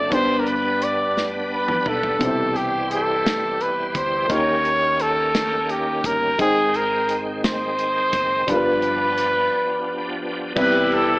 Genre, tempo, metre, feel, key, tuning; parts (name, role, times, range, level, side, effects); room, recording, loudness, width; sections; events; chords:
slow gospel; 57 BPM (dotted quarters); 6/8; straight; A4 = 440 Hz
clear trumpet; melody; 0.0-10.2 s; G4 to D5; -20 LUFS; equal; slapback echo
dark baby grand piano; accompaniment; 0.0-11.2 s; G2 to G5; -26 LUFS; left 1 dB
bright tonewheel organ; sustained chords; 0.0-11.2 s; C3 to G5; -26 LUFS; equal; slow rotary speaker, chorus vibrato
hollow-body short-scale fingered electric bass; bass; 0.0-11.2 s; F#1 to Eb2; -38 LUFS; equal
modern studio drum kit; drums; 0.1-11.1 s; crash cymbal, hi-hat, kick drum, ride cymbal, snare drum, toms; -26 LUFS; equal
warm horn section; melody; 10.6-11.2 s; E4 to B4; -18 LUFS; equal
moderate large studio reverb, RT60 1.3 s; AM radio sound; -18 LUFS; side -22 dB against mid
0.0-10.6 A section
drum fill 1.2-2.2; break 9.5-10.6
0.1 G; 2.2 Cmaj7; 4.3 Eb7; 6.4 Abmaj7; 8.5 G7; 10.6 Cmaj7